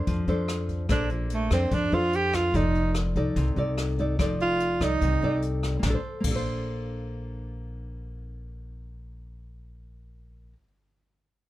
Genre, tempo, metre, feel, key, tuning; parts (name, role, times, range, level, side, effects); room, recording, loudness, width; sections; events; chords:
bossa nova; 146 BPM; 4/4; straight; Bb major; A4 = 440 Hz
nylon-string guitar; accompaniment; 0.0-10.7 s; C3 to D5; -29 LUFS; left 1 dB
upright bass; bass; 0.0-10.5 s; F1 to F2; -29 LUFS; equal
jazz brush drum kit; drums; 0.1-6.4 s; crash cymbal, hi-hat, kick drum, rim click, snare drum; -33 LUFS; left 1 dB
breathy tenor saxophone; melody; 0.9-5.4 s; F3 to G4; -26 LUFS; right 3 dB
little or no reverb; faint mains hum; -24 LUFS; side -15 dB against mid
0.0-5.8 A section; 5.8-9.1 B section
tenor saxophone solo 0.0-5.8
0.0 Bbmaj9; 2.5 F6; 5.8 Bbmaj9